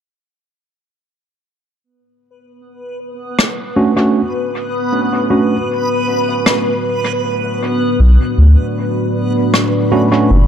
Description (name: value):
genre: ambient dub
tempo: 78 BPM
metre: 4/4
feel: straight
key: B minor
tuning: A4 = 439 Hz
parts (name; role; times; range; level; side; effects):
- backwards swelling texture; texture; 2.8-10.5 s; B3 to B4; -18 LUFS; equal; built-in reverb
- deep dark ambient pad; sustained chords; 4.1-10.5 s; A3 to D5; -20 LUFS; equal; chorus, built-in reverb
- rim click; drums; 3.4-9.7 s; none; -17 LUFS; left 1 dB; dub echo
- tine electric piano; stabs; 3.8-10.4 s; A3 to F#4; -16 LUFS; right 2 dB; medium stereo tremolo, low-pass filter, dub echo
- soft dub sub bass; bass; 8.0-10.5 s; F#1 to D2; -7 LUFS; equal; none
room: moderate spring reverb, RT60 2.3 s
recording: echo-heavy mix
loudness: -12 LUFS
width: side -9 dB against mid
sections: 1.8-10.5 A section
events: fade-in on ambient pad 1.8-10.5; filter sweep on tine electric piano 1.8-10.5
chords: 1.8 Bm7